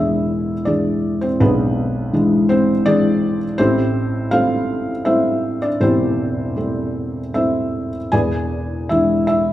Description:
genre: classical, lyrical solo piano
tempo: 81 BPM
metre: 3/4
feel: rubato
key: A minor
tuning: A4 = 439 Hz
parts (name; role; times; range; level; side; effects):
- felt-muted upright piano; solo; 0.0-9.5 s; E1 to G#5; -16 LUFS; equal; none
room: wet recital hall reverb, RT60 1.4 s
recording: recorded in a church or concert hall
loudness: -16 LUFS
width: side -13 dB against mid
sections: 0.0-9.5 A section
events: none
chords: 0.0 E7; 3.6 Am7; 8.1 E7

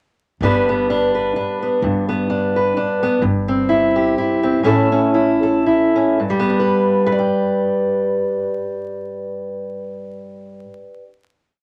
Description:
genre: acoustic folk duo or small band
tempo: 108-129 BPM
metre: 3/4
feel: swing 55% on 8ths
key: G major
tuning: A4 = 441 Hz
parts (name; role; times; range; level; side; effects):
- fingerpicked steel-string acoustic guitar; accompaniment; 0.4-11.1 s; G2 to G5; -18 LUFS; equal; none
- upright bass; bass; 0.4-4.1 s; G1; -27 LUFS; equal; none
room: wet small room reverb, RT60 0.5 s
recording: vinyl crackle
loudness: -18 LUFS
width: mono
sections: 0.4-6.2 interlude; 6.2-9.5 final chord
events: slowing down 3.2-6.2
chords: 0.4 G; 3.2 C/G; 4.6 A; 6.2 G

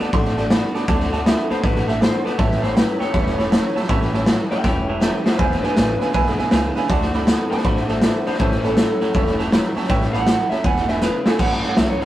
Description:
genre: rockabilly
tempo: 160 BPM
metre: 4/4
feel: swing 64% on 8ths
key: A mixolydian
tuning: A4 = 440 Hz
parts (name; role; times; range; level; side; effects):
- electric guitar through a small old amp; melody; 0.0-12.1 s; E4 to A5; -24 LUFS; equal; none
- bright upright piano; accompaniment; 0.0-11.4 s; B4 to C6; -27 LUFS; right 4 dB; none
- picked steel-string acoustic guitar; accompaniment; 0.0-12.1 s; E2 to F#4; -28 LUFS; left 2 dB; none
- twangy electric guitar; riff; 0.0-12.1 s; E2 to B3; -27 LUFS; right 2 dB; none
- upright bass; bass; 0.0-12.0 s; E1 to D2; -27 LUFS; equal; none
- raw garage drum kit; drums; 0.0-12.0 s; crash cymbal, hi-hat, kick drum, snare drum; -19 LUFS; equal; none
room: moderate studio reverb, RT60 0.5 s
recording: rough rehearsal-room recording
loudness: -16 LUFS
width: side -14 dB against mid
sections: 0.0-11.4 A section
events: drum fill 4.6-5.4, 11.0-11.4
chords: 0.0 D7; 2.4 A7; 5.4 E7; 6.9 D7; 8.4 A7; 10.7 E7; 11.4 A7

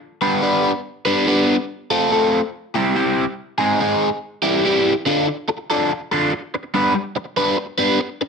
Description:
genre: rock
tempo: 142 BPM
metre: 4/4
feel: straight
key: unclear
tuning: A4 = 440 Hz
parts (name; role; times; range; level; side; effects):
- overdriven electric guitar; solo; 0.2-8.2 s; D3 to B4; -17 LUFS; equal; phaser, slapback echo
room: moderate studio reverb, RT60 0.8 s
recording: none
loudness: -17 LUFS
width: side -5 dB against mid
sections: 0.0-5.1 A section; 5.1-8.3 B section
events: none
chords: 0.0 G; 1.7 F; 2.5 C; 3.4 Ab; 4.2 Em; 5.1 Dm; 6.5 G

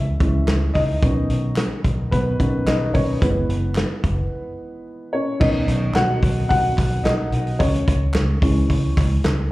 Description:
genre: piano-driven pop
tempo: 110 BPM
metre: 4/4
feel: straight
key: B major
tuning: A4 = 440 Hz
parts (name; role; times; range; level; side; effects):
- dark upright piano; accompaniment; 0.0-9.5 s; D#3 to F#5; -23 LUFS; equal; slapback echo
- vintage muted fingered electric bass; bass; 0.0-9.5 s; F#1 to C#2; -21 LUFS; equal; none
- loose indie drum kit; drums; 0.2-9.4 s; crash cymbal, hi-hat, kick drum, snare drum; -22 LUFS; equal; none
- group handclap; percussion; 0.5-9.4 s; none; -36 LUFS; right 2 dB; slapback echo
room: small room ambience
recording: live gig heard through the venue's PA, club reverb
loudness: -17 LUFS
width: side -18 dB against mid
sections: 0.0-5.4 A section; 5.4-9.5 B section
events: upright piano solo 0.0-5.4, 5.4-9.5; break 4.3-5.4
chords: 0.0 C#m; 1.0 Badd9; 3.2 F#7sus4; 5.4 Badd9; 7.6 C#m

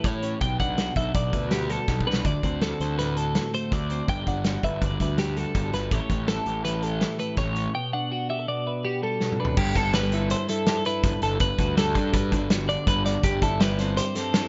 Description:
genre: math rock and midwest emo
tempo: 164 BPM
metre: 5/4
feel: straight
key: G major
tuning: A4 = 440 Hz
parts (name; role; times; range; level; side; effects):
- twelve-string electric guitar; accompaniment; 0.0-14.5 s; G2 to C5; -32 LUFS; equal; none
- twelve-string electric guitar; arpeggios; 0.0-14.5 s; G4 to G5; -31 LUFS; equal; digital delay
- fuzz picked electric bass; bass; 0.0-14.0 s; G1 to A2; -31 LUFS; equal; overdrive
- loose indie drum kit; drums; 0.0-14.4 s; crash cymbal, hi-hat, kick drum, snare drum, toms; -29 LUFS; equal; none
room: light reverb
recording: nothing above 7.6 kHz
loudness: -25 LUFS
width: mono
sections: 0.0-9.6 A section; 9.6-14.5 B section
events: drum fill 1.9-2.3, 9.2-9.6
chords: 0.4 Gmaj7/B; 2.3 D7; 4.1 Gmaj7; 5.9 A7; 7.8 Gmaj7/B; 9.6 C6/G (rootless); 11.4 Gmaj9; 13.2 D9sus4/G

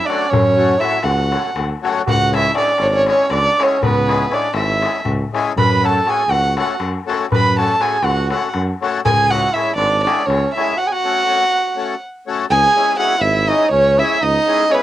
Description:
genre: balkan folk, Balkan wedding band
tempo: 242 BPM (eighths)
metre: 7/8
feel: straight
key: F# minor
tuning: A4 = 440 Hz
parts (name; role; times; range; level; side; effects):
- warm violin; melody; 0.0-14.8 s; B4 to B5; -16 LUFS; equal; cassette tape
- mellow trumpet; second line; 0.0-14.8 s; B3 to B4; -22 LUFS; right 7 dB; cassette tape
- accordion; accompaniment; 0.1-14.8 s; F#3 to A4; -21 LUFS; left 6 dB; cassette tape
- darbuka; percussion; 0.1-10.7 s; none; -22 LUFS; left 4 dB; none
- mellow tuba; bass; 0.3-14.4 s; G#1 to F#2; -20 LUFS; equal; none
room: moderate booth ambience, RT60 0.2 s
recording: home recording on cassette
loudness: -14 LUFS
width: side -13 dB against mid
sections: 0.0-12.5 A section; 12.5-14.8 B section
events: speeding up 0.0-14.8; break 10.8-12.5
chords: 0.0 F#m; 2.1 C#m; 5.6 F#m; 9.1 C#m; 10.8 F#m; 12.5 C#m

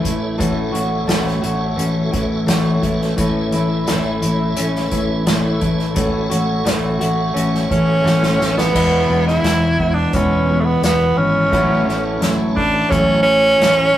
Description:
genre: folk rock and heartland rock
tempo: 86 BPM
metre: 4/4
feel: straight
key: A major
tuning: A4 = 440 Hz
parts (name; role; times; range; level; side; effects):
- picked steel-string acoustic guitar; accompaniment; 0.0-14.0 s; E2 to F#4; -22 LUFS; left 1 dB; none
- tonewheel organ; sustained chords; 0.0-14.0 s; A3 to E5; -28 LUFS; equal; slow rotary speaker, overdrive, chorus vibrato
- electric guitar through a small old amp; riff; 0.0-14.0 s; E2 to F#4; -22 LUFS; equal; none
- fingered electric bass; bass; 0.0-14.0 s; E1 to A1; -22 LUFS; left 1 dB; none
- unplugged drum kit; drums; 0.0-13.8 s; crash cymbal, hi-hat, kick drum, snare drum; -22 LUFS; equal; none
- bright tenor saxophone; melody; 7.7-14.0 s; A3 to E4; -16 LUFS; right 2 dB; none
room: moderate studio reverb, RT60 0.6 s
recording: rough rehearsal-room recording, warm saturation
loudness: -14 LUFS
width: side -12 dB against mid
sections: 0.0-8.7 A section; 8.7-14.0 B section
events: drum fill 8.0-8.7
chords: 0.4 F#m7/A; 3.2 A; 6.0 F#m7/A; 8.7 E; 11.5 A6

